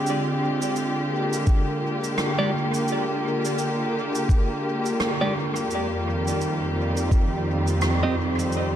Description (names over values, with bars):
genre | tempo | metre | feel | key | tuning
ambient dub | 85 BPM | 4/4 | swing 60% on 16ths | F dorian | A4 = 436 Hz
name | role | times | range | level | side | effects
rich studio string section | sustained chords | 0.0-8.8 s | F2 to C5 | -23 LUFS | equal | none
cabasa and rim click | drums | 0.1-8.7 s | none | -32 LUFS | right 1 dB | dub echo
electronic kick drum | drums | 1.5-7.3 s | none | -19 LUFS | equal | none
clean electric guitar | stabs | 2.4-8.1 s | Ab3 to Eb5 | -31 LUFS | right 1 dB | dub echo
room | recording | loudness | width
light reverb, small room ambience | dark, warm production | -22 LUFS | side -10 dB against mid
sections
0.0-8.8 A section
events
none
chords
0.0 Fm69; 5.7 Cm/F